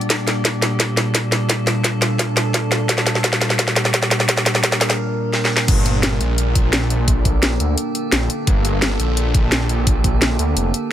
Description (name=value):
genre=dark technical drum and bass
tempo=172 BPM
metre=4/4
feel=straight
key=G minor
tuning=A4 = 440 Hz
part: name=metallic inharmonic drone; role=sustained chords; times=0.0-10.9 s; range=Bb2 to Bb4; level=-22 LUFS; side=equal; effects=chorus, built-in reverb, sidechain pumping
part: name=drum and bass drum kit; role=drums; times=0.0-10.8 s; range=crash cymbal, hi-hat, snare drum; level=-18 LUFS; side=equal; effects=high-pass filter on snare, high-pass filter on hats, high-pass filter on cymbals, high-pass filter on room
part: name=electronic kick drum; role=drums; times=0.1-10.1 s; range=none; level=-18 LUFS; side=equal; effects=high-pass filter on kick, high-pass filter on room
part: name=wide detuned saw bass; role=bass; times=5.7-10.7 s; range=F1 to D2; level=-19 LUFS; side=equal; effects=chorus, tube saturation
room=light reverb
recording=none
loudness=-15 LUFS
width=side -11 dB against mid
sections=0.0-5.7 A section; 5.7-10.9 B section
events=build-up 0.0-5.7; drum fill 0.0-5.0, 5.3-5.7; break 5.0-5.7; drop 5.7-10.9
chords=0.0 Gmadd9